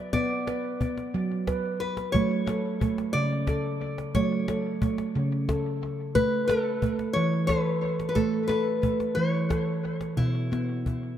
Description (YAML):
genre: world meditative, meditative tuned percussion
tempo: 60 BPM (dotted quarters)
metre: 6/8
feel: straight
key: unclear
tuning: A4 = 441 Hz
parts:
  - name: nylon-string guitar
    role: melody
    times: 0.0-10.8 s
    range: E4 to D5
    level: -30 LUFS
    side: left 3 dB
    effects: dub echo
  - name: handpan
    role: arpeggios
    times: 0.0-11.2 s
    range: B2 to B4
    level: -27 LUFS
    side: right 2 dB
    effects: none
  - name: cajon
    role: percussion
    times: 0.1-11.0 s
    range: none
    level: -32 LUFS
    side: left 1 dB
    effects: dub echo
room: wet spring reverb, RT60 2.7 s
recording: echo-heavy mix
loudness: -24 LUFS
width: side -10 dB against mid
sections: 0.0-10.2 A section; 10.2-11.2 B section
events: none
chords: 0.0 Bm; 2.1 F#m; 6.2 A; 10.2 N.C.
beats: | 0.13 1.14 | 2.14 3.14 | 4.14 5.15 | 6.15 7.16 | 8.16 9.17 | 10.18